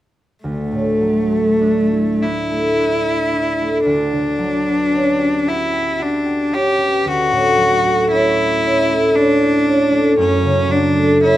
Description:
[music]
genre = classical, impressionist duo for cello and harp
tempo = 48-59 BPM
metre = 3/4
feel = rubato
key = D major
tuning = A4 = 439 Hz
[part]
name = rich cello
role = melody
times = 0.4-11.4 s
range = A3 to G4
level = -16 LUFS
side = left 1 dB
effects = none
[part]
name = concert harp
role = accompaniment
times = 0.4-11.4 s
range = D2 to G4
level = -17 LUFS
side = right 1 dB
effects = none
[sound]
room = light reverb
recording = close, detailed microphones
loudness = -14 LUFS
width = side -13 dB against mid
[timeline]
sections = 0.4-11.4 A section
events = none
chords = 0.4 Dadd9; 3.9 Gmaj7#11/D; 7.1 Dmaj9; 10.2 F#m7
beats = | 0.44 1.61 2.79 | 3.86 4.93 6.00 | 7.06 8.11 9.15 | 10.18 11.21

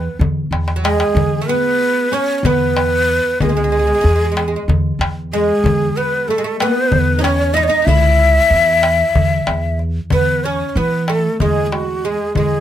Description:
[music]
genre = Turkish makam ensemble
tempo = 188 BPM (eighths)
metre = 7/8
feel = straight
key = E makam rast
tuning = A4 = 440 Hz
[part]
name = breathy ney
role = melody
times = 0.0-12.6 s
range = F#4 to E5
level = -16 LUFS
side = left 1 dB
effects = none
[part]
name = nylon-string guitar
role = second line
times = 0.0-9.8 s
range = G#3 to E4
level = -23 LUFS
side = left 3 dB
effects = none
[part]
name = oud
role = second line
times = 0.0-12.6 s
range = F#3 to E4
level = -22 LUFS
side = right 7 dB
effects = none
[part]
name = upright bass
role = bass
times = 0.0-12.6 s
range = C#2 to E3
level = -18 LUFS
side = equal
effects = none
[part]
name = darbuka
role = percussion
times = 0.2-12.5 s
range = none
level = -20 LUFS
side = left 2 dB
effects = none
[sound]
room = light reverb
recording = close, detailed microphones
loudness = -13 LUFS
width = side -11 dB against mid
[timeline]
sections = 0.0-10.1 A section; 10.1-12.6 B section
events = drum fill 0.5-1.2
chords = none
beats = 0.20 0.52 0.84 | 1.16 1.48 1.80 2.12 2.44 2.76 3.08 | 3.40 3.72 4.04 4.36 4.68 5.00 5.32 | 5.64 5.96 6.28 6.60 6.92 7.24 7.56 | 7.88 8.20 8.52 8.84 9.16 9.48 9.80 | 10.12 10.44 10.76 11.08 11.40 11.72 12.04 | 12.37

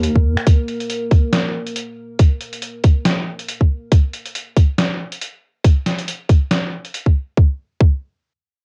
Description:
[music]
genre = deep dubstep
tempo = 139 BPM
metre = 4/4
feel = swing 56% on 16ths, half-time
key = unclear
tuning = A4 = 440 Hz
[part]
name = dark analog pad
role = sustained chords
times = 0.0-4.0 s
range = Bb3 to Bb4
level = -31 LUFS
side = equal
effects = chorus, cassette tape
[part]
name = trip hop sampler-style drum kit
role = drums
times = 0.0-7.0 s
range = finger snaps, hi-hat, snare drum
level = -24 LUFS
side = equal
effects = cassette tape
[part]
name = electronic kick drum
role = drums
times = 0.2-7.9 s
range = none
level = -14 LUFS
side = equal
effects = cassette tape
[sound]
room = light reverb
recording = home recording on cassette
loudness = -18 LUFS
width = mono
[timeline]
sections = 0.0-7.4 A section; 7.4-8.6 B section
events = none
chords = none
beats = 0.03 | 0.46 0.90 1.33 1.76 | 2.19 2.62 3.05 3.48 | 3.92 4.35 4.78 5.21 | 5.64 6.08 6.51 6.94 | 7.37 7.80

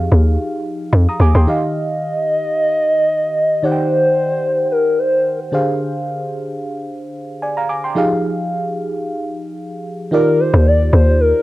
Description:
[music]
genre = amapiano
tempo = 111 BPM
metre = 4/4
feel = swing 55% on 16ths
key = Eb major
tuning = A4 = 440 Hz
[part]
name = FM electric piano with auto-pan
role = accompaniment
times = 0.0-11.4 s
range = D3 to Eb6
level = -20 LUFS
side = right 1 dB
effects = cassette tape
[part]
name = hollow log drum bass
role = bass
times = 0.0-1.5, 10.5-11.3 s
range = Eb2 to F2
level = -11 LUFS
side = equal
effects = none
[part]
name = hollow clarinet-like synth lead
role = melody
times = 1.5-5.5, 10.1-11.4 s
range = Bb4 to Eb5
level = -16 LUFS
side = equal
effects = chorus, cassette tape, analog delay
[sound]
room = light reverb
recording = home recording on cassette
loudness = -14 LUFS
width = side -17 dB against mid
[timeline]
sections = 0.0-1.5 A section; 1.5-10.1 B section; 10.1-11.4 A section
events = drop 0.0-1.5, 10.1-11.4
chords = 0.0 Fm9; 1.5 Ebmaj9; 5.5 Bb13/D; 8.0 Fm9; 10.1 Ebmaj9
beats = 0.39 0.93 | 1.47 2.01 2.55 3.09 | 3.63 4.17 4.71 5.25 | 5.79 6.34 6.88 7.42 | 7.96 8.50 9.04 9.58 | 10.12 10.66 11.20

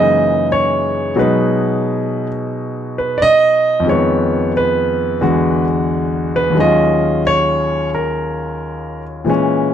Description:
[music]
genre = solo jazz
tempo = 89 BPM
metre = 4/4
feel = swing 67% on 8ths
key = Eb minor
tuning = A4 = 440 Hz
[part]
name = clear concert grand piano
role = solo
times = 0.0-9.7 s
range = Eb2 to Eb5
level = -13 LUFS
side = equal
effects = none
[sound]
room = moderate studio reverb, RT60 0.7 s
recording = none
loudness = -13 LUFS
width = side -9 dB against mid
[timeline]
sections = 0.0-9.7 A section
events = grand piano solo 0.0-9.7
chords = 0.0 Gb13; 1.2 B6; 3.9 Fm7b5; 5.2 E9; 6.6 Ebm11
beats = 0.49 | 1.16 1.84 2.51 3.19 | 3.86 4.54 5.21 5.89 | 6.56 7.24 7.91 8.59 | 9.26

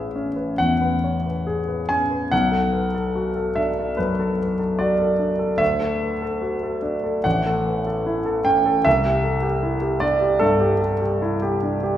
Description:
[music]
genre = classical, impressionist solo piano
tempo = 67-78 BPM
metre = 4/4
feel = rubato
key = unclear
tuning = A4 = 445 Hz
[part]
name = clear grand piano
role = solo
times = 0.0-12.0 s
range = A1 to G#5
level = -19 LUFS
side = equal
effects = none
[sound]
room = wet recital hall reverb, RT60 1.4 s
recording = heard from further back in the room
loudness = -19 LUFS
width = side -11 dB against mid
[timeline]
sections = 0.0-12.0 A section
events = none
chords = 0.0 Amaj9; 2.3 Bm7; 5.6 D; 7.2 A69; 8.9 Cadd9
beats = 0.58 1.46 | 2.32 3.16 3.99 4.80 | 5.61 6.42 7.25 8.07 | 8.86 9.63 10.43 11.23

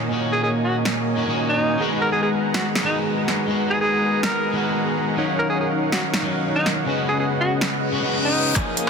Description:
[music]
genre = future bass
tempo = 142 BPM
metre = 4/4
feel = half-time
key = unclear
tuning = A4 = 440 Hz
[part]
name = electric guitar at the edge of break-up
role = accompaniment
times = 0.0-8.9 s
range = A#2 to G#4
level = -25 LUFS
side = left 2 dB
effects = wide subtle chorus, sidechain pumping, digital delay
[part]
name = big bright polysynth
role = riff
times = 0.0-8.9 s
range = G#3 to A#5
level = -24 LUFS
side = right 1 dB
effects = sidechain pumping
[part]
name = breathy alto saxophone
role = melody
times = 0.3-8.6 s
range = D#4 to A#4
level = -24 LUFS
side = equal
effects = sidechain pumping, digital delay
[part]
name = dubstep drum kit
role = drums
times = 0.9-8.9 s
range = handclaps, hi-hat, snare drum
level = -27 LUFS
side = right 1 dB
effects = overdrive
[part]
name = reverse cymbal and riser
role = sound effects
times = 7.9-8.9 s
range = none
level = -25 LUFS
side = left 4 dB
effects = none
[part]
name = electronic kick drum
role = drums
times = 8.6 s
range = none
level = -25 LUFS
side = equal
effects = overdrive
[sound]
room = moderate huge ambient reverb, RT60 8.3 s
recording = dense, heavily limited modern master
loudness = -19 LUFS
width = side -5 dB against mid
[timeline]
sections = 0.0-8.6 A section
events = reverse cymbal 7.9-8.6; drum fill 8.6-8.9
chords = 0.0 F#6/A#; 1.8 G#m7; 5.2 D#m9; 6.9 C#7sus4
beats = | 0.11 0.54 0.96 1.38 | 1.80 2.23 2.65 3.07 | 3.49 3.92 4.34 4.76 | 5.18 5.61 6.03 6.45 | 6.87 7.29 7.72 8.14 | 8.56

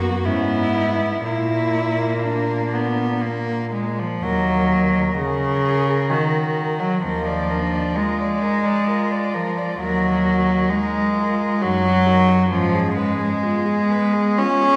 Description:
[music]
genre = classical, lyrical piece for cello ensemble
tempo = 59-67 BPM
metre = 3/4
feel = rubato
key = Eb minor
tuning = A4 = 439 Hz
[part]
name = dark cello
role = melody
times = 0.0-14.8 s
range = Bb3 to Ab4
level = -29 LUFS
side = equal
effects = none
[part]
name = warm cello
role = second line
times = 0.0-14.8 s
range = Bb3 to D5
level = -30 LUFS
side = equal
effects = none
[part]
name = rich cello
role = accompaniment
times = 0.0-14.8 s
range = Db3 to Db4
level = -22 LUFS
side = equal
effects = none
[part]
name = dark cello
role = bass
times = 0.0-13.3 s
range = Eb2 to Bb2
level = -28 LUFS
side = equal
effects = none
[sound]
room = wet concert hall reverb, RT60 1.9 s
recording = heard from further back in the room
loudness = -20 LUFS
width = mono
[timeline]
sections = 0.0-4.2 A section; 4.2-14.8 B section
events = none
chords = 0.3 E/G#; 1.2 Bb; 4.2 Ebm; 7.0 Bb7/Eb; 9.8 Ebm; 11.6 Ebm/Gb; 12.5 Fdim/Ab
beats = 0.25 | 1.24 2.24 3.23 | 4.23 5.17 6.11 | 7.03 7.96 8.88 | 9.79 10.71 11.62 | 12.52 13.42 14.38

